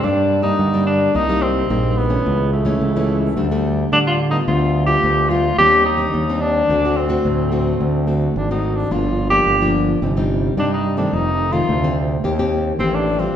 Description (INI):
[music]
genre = samba and choro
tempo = 108 BPM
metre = 4/4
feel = straight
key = G minor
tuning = A4 = 440 Hz
[part]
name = warm tenor saxophone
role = melody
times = 0.0-13.4 s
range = A3 to G4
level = -19 LUFS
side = left 1 dB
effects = none
[part]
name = nylon-string guitar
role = accompaniment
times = 0.0-13.4 s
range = F2 to G4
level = -21 LUFS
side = left 2 dB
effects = none
[part]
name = growling fingered electric bass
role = bass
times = 0.0-13.3 s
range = F1 to D3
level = -20 LUFS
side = right 1 dB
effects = overdrive
[sound]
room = wet recital hall reverb, RT60 1.4 s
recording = recorded in a church or concert hall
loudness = -15 LUFS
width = side -9 dB against mid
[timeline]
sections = 0.0-13.4 A section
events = none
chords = 0.0 Gm; 1.1 Cm7; 2.3 A/C#; 3.4 Dsus4; 4.5 G7/D; 5.6 Cmadd9/Eb; 6.7 D7; 8.9 Gm7; 10.0 Cm/G; 11.1 F7; 12.2 Cm7/Eb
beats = | 0.04 0.59 1.15 1.70 | 2.26 2.81 3.37 3.92 | 4.48 5.03 5.59 6.14 | 6.70 7.25 7.80 8.36 | 8.91 9.47 10.02 10.58 | 11.13 11.69 12.24 12.79 | 13.35